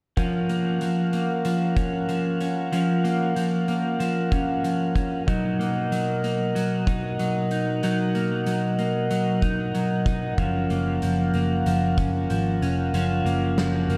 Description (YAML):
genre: dream pop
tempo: 94 BPM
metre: 4/4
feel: straight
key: F# major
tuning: A4 = 440 Hz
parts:
  - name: mellow tonewheel organ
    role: sustained chords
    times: 0.2-14.0 s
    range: B2 to F#5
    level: -30 LUFS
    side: equal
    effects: slow rotary speaker
  - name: clean electric guitar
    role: arpeggios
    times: 0.2-14.0 s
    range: E#3 to D#4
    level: -27 LUFS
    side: equal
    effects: lush chorus, delay
  - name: oversized low-tuned drum kit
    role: drums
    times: 0.2-14.0 s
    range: hi-hat, kick drum, snare drum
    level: -32 LUFS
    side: equal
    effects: none
  - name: vintage muted picked electric bass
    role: bass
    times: 10.4-14.0 s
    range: E#1 to G#1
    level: -28 LUFS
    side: equal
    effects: none
room: moderate plate reverb, RT60 1.8 s, small room ambience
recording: none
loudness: -24 LUFS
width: mono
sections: 0.2-14.0 A section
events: none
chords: 0.2 F#maj7; 5.3 Bmaj7; 10.4 F#maj7